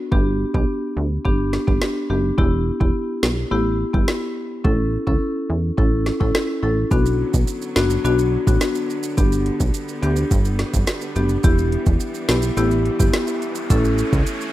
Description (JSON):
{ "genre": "dancehall", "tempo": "106 BPM", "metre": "4/4", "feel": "straight", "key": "B minor", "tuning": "A4 = 440 Hz", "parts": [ { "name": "marimba with medium mallets", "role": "accompaniment", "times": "0.1-14.2 s", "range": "B3 to A4", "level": "-22 LUFS", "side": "left 2 dB", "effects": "none" }, { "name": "plucky analog bass", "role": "bass", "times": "0.1-14.2 s", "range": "E1 to E2", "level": "-21 LUFS", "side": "equal", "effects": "none" }, { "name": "afro-pop drum kit", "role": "drums", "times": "0.1-14.4 s", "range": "hi-hat, kick drum, rim click, snare drum", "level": "-20 LUFS", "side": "equal", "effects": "overdrive" }, { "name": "bright studio string section", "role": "sustained chords", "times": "6.9-14.5 s", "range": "D3 to C#4", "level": "-32 LUFS", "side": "right 2 dB", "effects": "sidechain pumping" }, { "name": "maracas", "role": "percussion", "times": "6.9-14.5 s", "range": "none", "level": "-36 LUFS", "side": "right 9 dB", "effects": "none" }, { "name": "riser", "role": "sound effects", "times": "12.7-14.5 s", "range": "none", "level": "-34 LUFS", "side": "equal", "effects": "none" } ], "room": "light reverb, studio reverb", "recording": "rough home demo mix", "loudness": "-17 LUFS", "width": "side -15 dB against mid", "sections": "0.0-6.9 A section; 6.9-14.5 B section", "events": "riser 12.7-14.5", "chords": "0.1 G; 2.4 Em; 4.6 A; 6.9 Bm; 9.2 G; 11.4 Em; 13.7 A" }